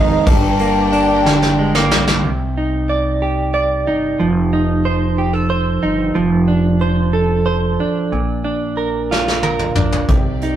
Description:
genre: six-eight pop ballad.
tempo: 61 BPM (dotted quarters).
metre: 6/8.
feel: straight.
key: Bb major.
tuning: A4 = 439 Hz.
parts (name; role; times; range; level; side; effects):
warm French horn section; second line; 0.0-1.9 s; D4 to Eb4; -17 LUFS; left 1 dB; none.
direct-recorded clean electric guitar; accompaniment; 0.0-10.6 s; F2 to D5; -16 LUFS; right 2 dB; vibrato effect.
warm studio string section; sustained chords; 0.0-2.2, 10.1-10.6 s; C3 to G5; -23 LUFS; left 2 dB; none.
upright bass; bass; 0.0-10.6 s; F1 to C2; -22 LUFS; left 1 dB; none.
soft brush drum kit; drums; 0.3-2.2, 9.1-10.6 s; hi-hat, kick drum, ride cymbal, snare drum, toms; -17 LUFS; equal; none.
room: moderate studio reverb, RT60 0.6 s.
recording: rough rehearsal-room recording, tube saturation.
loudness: -14 LUFS.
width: side -11 dB against mid.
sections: 0.0-2.2 A section; 2.2-10.6 B section.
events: drum fill 1.2-2.2, 9.1-10.1.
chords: 0.3 Gm; 2.2 Cmadd9; 4.2 F7; 6.2 Dm7/F; 8.1 Bb.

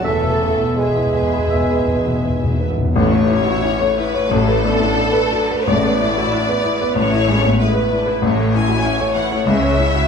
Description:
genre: classical, romantic movement for piano and orchestra.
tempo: 80-98 BPM.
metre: 4/4.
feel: rubato.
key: A major.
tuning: A4 = 440 Hz.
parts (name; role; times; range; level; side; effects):
clear chamber violin section; melody; 0.0-10.1 s; B4 to E5; -31 LUFS; left 1 dB; none.
warm baby grand piano; melody; 0.0-10.1 s; A1 to B5; -19 LUFS; left 2 dB; none.
clear oboe; second line; 0.0-1.8 s; E5; -31 LUFS; left 1 dB; none.
rich symphonic violin section; second line; 0.0-10.1 s; A4 to G#5; -21 LUFS; left 2 dB; none.
wooden flute; second line; 0.0-2.6 s; G#5 to A5; -30 LUFS; left 5 dB; none.
clear symphonic viola section; accompaniment; 0.0-10.1 s; E3 to A4; -26 LUFS; left 1 dB; none.
warm bassoon; accompaniment; 0.0-2.6 s; G#3 to A3; -22 LUFS; right 2 dB; none.
mellow French horn section; sustained chords; 0.0-2.6 s; none; barely audible; none; none.
warm trombone section; sustained chords; 0.0-2.6 s; E3 to B3; -28 LUFS; right 2 dB; none.
mellow trumpet; stabs; 0.0-2.6 s; G#4 to A4; -28 LUFS; right 1 dB; none.
clear symphonic double bass section; bass; 0.0-10.0 s; E1 to C#2; -23 LUFS; right 1 dB; none.
rich symphonic cello section; bass; 0.0-10.0 s; E2 to C#3; -25 LUFS; right 1 dB; none.
dark clarinet; second line; 0.1-1.8 s; B4; -29 LUFS; equal; none.
timpani; percussion; 0.1-2.9 s; E2; -23 LUFS; equal; none.
room: wet stone room reverb, RT60 0.9 s.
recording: dark, warm production.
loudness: -14 LUFS.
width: side -6 dB against mid.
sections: 0.0-3.0 A section; 3.0-10.1 B section.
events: timpani fill 0.1-3.0.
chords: 0.1 E; 3.0 A; 4.3 Bm7/A; 5.7 E7/A; 8.2 A; 9.5 C#m.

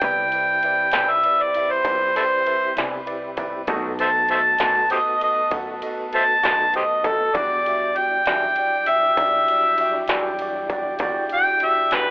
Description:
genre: slow blues.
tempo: 66 BPM (dotted quarters).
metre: 12/8.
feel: straight.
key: E minor.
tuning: A4 = 440 Hz.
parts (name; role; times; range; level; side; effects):
overdriven harmonica; melody; 0.0-12.1 s; E4 to A5; -18 LUFS; equal; none.
barky tine electric piano; accompaniment; 0.0-12.1 s; E4 to F#5; -29 LUFS; right 1 dB; phaser.
semi-hollow electric guitar; accompaniment; 0.0-12.1 s; B2 to G4; -28 LUFS; left 1 dB; tremolo.
mellow horn section; sustained chords; 0.0-12.1 s; G4 to B5; -32 LUFS; equal; none.
tonewheel organ; sustained chords; 0.0-12.1 s; F#3 to G4; -34 LUFS; equal; slow rotary speaker, overdrive, chorus vibrato.
upright bass; bass; 0.0-12.1 s; B1 to G2; -37 LUFS; equal; none.
industrial drum kit; drums; 0.0-12.1 s; kick drum, ride cymbal, snare drum; -28 LUFS; equal; distortion.
room: light reverb.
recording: telephone sound.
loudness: -18 LUFS.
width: side -24 dB against mid.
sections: 0.0-12.1 A section.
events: harmonica solo 0.0-12.1.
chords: 0.0 Cmaj7; 3.7 B7; 7.3 Em9.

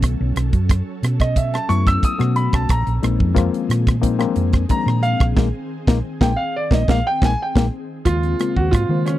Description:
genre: electric jazz fusion.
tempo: 90 BPM.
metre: 4/4.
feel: straight.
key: unclear.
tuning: A4 = 440 Hz.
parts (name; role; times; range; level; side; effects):
reed electric piano; accompaniment; 0.0-9.2 s; Db3 to C5; -22 LUFS; left 8 dB; none.
ethereal airy pad; sustained chords; 0.0-9.2 s; Eb3 to C6; -32 LUFS; right 1 dB; ensemble chorus, built-in reverb.
hollow-body short-scale fingered electric bass; bass; 0.0-9.2 s; Bb1 to Eb3; -20 LUFS; right 1 dB; transformer saturation.
tight funk drum kit; drums; 0.0-9.2 s; hi-hat, kick drum, rim click, snare drum; -18 LUFS; right 1 dB; none.
warm concert grand piano; melody; 1.2-9.2 s; Db4 to E6; -22 LUFS; right 1 dB; none.
room: little or no reverb.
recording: dry, close 1970s-style studio recording.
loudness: -16 LUFS.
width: side -14 dB against mid.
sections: 0.0-8.1 A section; 8.1-9.2 B section.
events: grand piano solo 0.0-8.1; band accent 5.4-8.1; drum fill 7.7-8.1.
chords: 0.0 B9sus4; 2.7 Bb9sus4; 8.1 Eb13sus4.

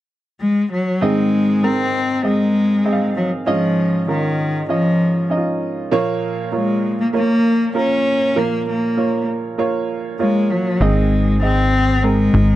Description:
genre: piano-driven pop.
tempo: 98 BPM.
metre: 4/4.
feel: straight.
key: Ab major.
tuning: A4 = 436 Hz.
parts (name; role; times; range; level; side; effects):
rich cello; melody; 0.4-12.6 s; Eb3 to Db4; -17 LUFS; left 2 dB; slapback echo.
clear upright piano; accompaniment; 1.0-12.6 s; Ab2 to F5; -20 LUFS; right 3 dB; none.
plucky analog bass; bass; 10.8-12.6 s; Ab1; -16 LUFS; equal; none.
room: moderate studio ambience, RT60 0.5 s.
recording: dry, close 1970s-style studio recording.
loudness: -15 LUFS.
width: side -14 dB against mid.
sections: 0.0-1.0 A section; 1.0-12.6 B section.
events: none.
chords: 0.0 N.C.; 1.0 Ab; 3.5 Dbadd9/Ab; 5.9 Bbm; 10.8 Ab.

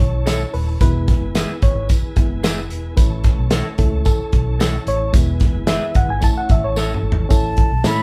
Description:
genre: uptempo 1960s-style soul.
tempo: 111 BPM.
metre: 4/4.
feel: straight.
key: A major.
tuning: A4 = 437 Hz.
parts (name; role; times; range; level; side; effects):
bright reed electric piano; accompaniment; 0.0-8.0 s; G#3 to A5; -27 LUFS; equal; none.
tonewheel organ; sustained chords; 0.0-7.3 s; E3 to A4; -35 LUFS; equal; fast rotary speaker.
vintage muted fingered electric bass; bass; 0.0-8.0 s; D#1 to A2; -24 LUFS; equal; none.
natural country drum kit; drums; 0.0-8.0 s; hi-hat, kick drum, snare drum, toms; -19 LUFS; equal; none.
electric guitar through a small old amp; stabs; 0.3-8.0 s; G#4 to E5; -30 LUFS; equal; none.
tambourine; percussion; 0.3-8.0 s; none; -36 LUFS; equal; none.
breathy concert flute; melody; 7.3-8.0 s; A5 to B5; -25 LUFS; equal; none.
room: light reverb.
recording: band playing live in one room.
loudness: -18 LUFS.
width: mono.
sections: 0.0-7.3 A section.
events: reed electric piano solo 0.0-7.3; drum fill 6.8-7.3.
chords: 0.0 A; 0.8 E; 3.0 A; 5.1 E; 6.2 A.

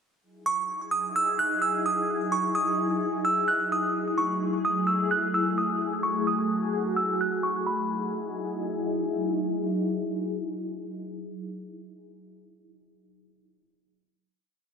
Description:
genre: hip hop, atmospheric cloud-rap.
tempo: 129 BPM.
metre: 4/4.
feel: half-time.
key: E major.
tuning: A4 = 440 Hz.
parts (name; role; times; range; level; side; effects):
glassy FM pad; sustained chords; 0.9-12.1 s; F#3 to G#4; -28 LUFS; left 1 dB; ensemble chorus, built-in reverb.
delicate synth tine bell; melody; 0.5-9.0 s; B5 to F#6; -26 LUFS; right 1 dB; chorus, ping-pong delay.
room: wet lush hall reverb, RT60 2.6 s.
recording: low-pass filter.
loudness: -25 LUFS.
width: side -6 dB against mid.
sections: 0.2-7.7 breakdown; 7.7-11.4 final chord.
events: filter sweep 0.2-7.7.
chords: 0.2 Emaj9; 3.9 F#m9; 7.7 Emaj9.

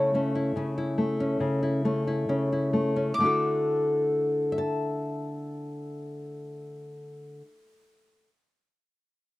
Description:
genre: folk.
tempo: 67-72 BPM.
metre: 4/4.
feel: straight.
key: D major.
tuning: A4 = 440 Hz.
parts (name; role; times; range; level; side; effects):
mandolin; melody; 0.0-7.3 s; A5 to D6; -28 LUFS; left 1 dB; none.
nylon-string guitar; accompaniment; 0.0-8.3 s; C#3 to A5; -26 LUFS; left 1 dB; none.
room: moderate booth ambience, RT60 0.2 s.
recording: dry, close 1970s-style studio recording.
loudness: -24 LUFS.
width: side -17 dB against mid.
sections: 0.0-3.2 A section; 3.2-6.8 B section.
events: slowing down 0.0-3.2.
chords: 0.0 A/C#; 3.2 Dadd9.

